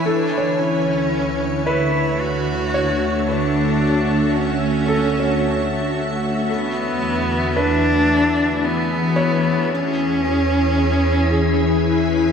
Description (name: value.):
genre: ambient.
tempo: 56 BPM.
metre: 3/4.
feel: straight.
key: D lydian.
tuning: A4 = 439 Hz.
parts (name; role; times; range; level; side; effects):
warm cello; melody; 0.0-12.3 s; B3 to F#4; -21 LUFS; equal; shimmer reverb, ping-pong delay.
soft additive organ-like pad; sustained chords; 0.0-12.3 s; D3 to C#6; -20 LUFS; left 1 dB; ensemble chorus, built-in reverb, shimmer reverb.
felt-muted upright piano; arpeggios; 0.1-12.3 s; G#4 to C#5; -25 LUFS; equal; shimmer reverb, ping-pong delay.
deep rumbling drone; bass; 0.8-12.3 s; D2 to E2; -27 LUFS; equal; built-in reverb.
room: wet concert hall reverb, RT60 2.2 s.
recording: none.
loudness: -16 LUFS.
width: side -7 dB against mid.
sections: 0.0-12.3 A section.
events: fade-in on cello 0.0-12.3.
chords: 0.1 Dmaj7; 6.5 E7; 9.7 E6.